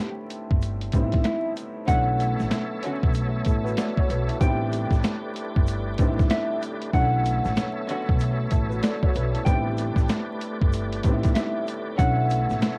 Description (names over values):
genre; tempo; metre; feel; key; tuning
hip hop, boom-bap hip-hop; 95 BPM; 4/4; swing 63% on 16ths; B minor; A4 = 440 Hz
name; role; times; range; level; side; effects
mellow electric guitar; melody; 0.0-12.8 s; E4 to G5; -31 LUFS; equal; analog chorus, high-pass filter, low-pass filter, analog delay
warm upright piano; accompaniment; 0.0-12.8 s; A2 to D5; -32 LUFS; equal; high-pass filter, low-pass filter, cassette tape
boom bap sampler-style drum kit; drums; 0.3-12.8 s; hi-hat, kick drum, snare drum; -25 LUFS; equal; cassette tape
tube shaker; percussion; 0.3-12.8 s; none; -55 LUFS; equal; none
upright bass; bass; 0.5-12.6 s; G1 to B1; -29 LUFS; equal; transformer saturation
tonewheel organ; sustained chords; 1.9-12.8 s; A3 to E5; -36 LUFS; equal; chorus vibrato, fast rotary speaker, high-pass filter, low-pass filter, cassette tape
warm studio string section; stabs; 1.9-3.1, 6.9-8.2, 12.0-12.1 s; D3 to F#4; -38 LUFS; equal; none
room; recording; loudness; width
light reverb; home recording on cassette, vinyl crackle; -24 LUFS; mono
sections
0.0-1.9 A section; 1.9-12.8 B section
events
none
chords
0.0 Am11; 1.9 Bm11; 4.4 Am11; 6.9 Bm11; 9.5 Am11; 12.0 Bm11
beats
0.62 1.25 | 1.88 2.51 3.15 3.78 | 4.41 5.04 5.67 6.30 | 6.93 7.57 8.20 8.83 | 9.46 10.09 10.72 11.36 | 11.99 12.62